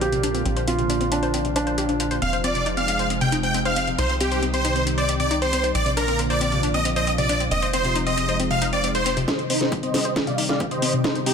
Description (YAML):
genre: uplifting trance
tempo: 136 BPM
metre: 4/4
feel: straight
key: C minor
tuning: A4 = 439 Hz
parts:
  - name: felt-muted upright piano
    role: second line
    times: 0.0-2.1 s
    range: D4 to G4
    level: -25 LUFS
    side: right 1 dB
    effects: dub echo
  - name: analog string pad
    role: sustained chords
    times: 0.0-11.3 s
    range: Bb2 to G4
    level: -27 LUFS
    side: equal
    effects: ensemble chorus, sidechain pumping
  - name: wide unison pluck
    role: arpeggios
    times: 0.0-11.3 s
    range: C3 to C5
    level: -28 LUFS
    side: left 2 dB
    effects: vintage 12-bit sampler grit, sidechain pumping, ping-pong delay
  - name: tight sequencer bass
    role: bass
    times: 0.0-9.3 s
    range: F1 to C2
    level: -28 LUFS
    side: equal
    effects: sidechain pumping
  - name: techno drum kit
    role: drums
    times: 0.0-11.3 s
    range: hi-hat, snare drum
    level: -28 LUFS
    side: equal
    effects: none
  - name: big supersaw lead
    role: melody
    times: 2.2-11.3 s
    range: Eb4 to G5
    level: -23 LUFS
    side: equal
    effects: sidechain pumping, low-pass filter, ping-pong delay
  - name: electronic kick drum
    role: drums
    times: 9.3-11.1 s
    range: none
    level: -31 LUFS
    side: equal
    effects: high-pass filter on kick, high-pass filter on room
room: moderate lush hall reverb, RT60 2.0 s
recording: none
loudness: -20 LUFS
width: side -6 dB against mid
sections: 0.0-9.3 A section; 9.3-11.3 B section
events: build-up 9.3-11.3; drum fill 9.3-11.3; filter sweep on supersaw synth 9.3-11.3; filter sweep on synth pluck 9.3-11.3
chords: 0.0 Bb; 2.2 Fm7; 4.0 Cm; 5.7 Bb; 7.5 Fm7; 9.3 Cm